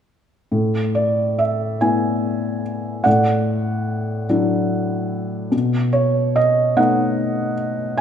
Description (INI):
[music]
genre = classical, lyrical solo piano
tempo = 48 BPM (dotted quarters)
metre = 6/8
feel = rubato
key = unclear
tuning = A4 = 439 Hz
[part]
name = felt-muted upright piano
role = solo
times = 0.5-8.0 s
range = A2 to G#5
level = -17 LUFS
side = equal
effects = none
[sound]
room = moderate concert hall reverb, RT60 1.9 s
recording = minimal, uncompressed stereo recording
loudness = -17 LUFS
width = side -8 dB against mid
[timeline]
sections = 0.5-8.0 A section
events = none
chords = 0.5 Asus2; 3.1 Dadd9/A; 5.5 B7